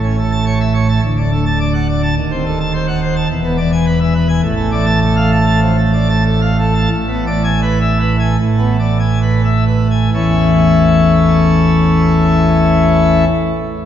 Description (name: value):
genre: classical, organ toccata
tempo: 63-107 BPM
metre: 4/4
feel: straight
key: A major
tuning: A4 = 440 Hz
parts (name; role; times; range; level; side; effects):
- pipe organ, plenum; solo; 0.0-13.2 s; D1 to A5; -11 LUFS; equal; none
room: wet church reverb, RT60 3.5 s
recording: heard from further back in the room, nothing above 7.8 kHz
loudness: -11 LUFS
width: side -10 dB against mid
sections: 0.0-10.1 A section; 10.1-13.9 B section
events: slowing down 3.3-10.1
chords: 0.0 A; 1.0 D; 2.2 D#dim7; 3.3 E7; 4.4 Dm/A; 6.9 E7/A; 10.1 A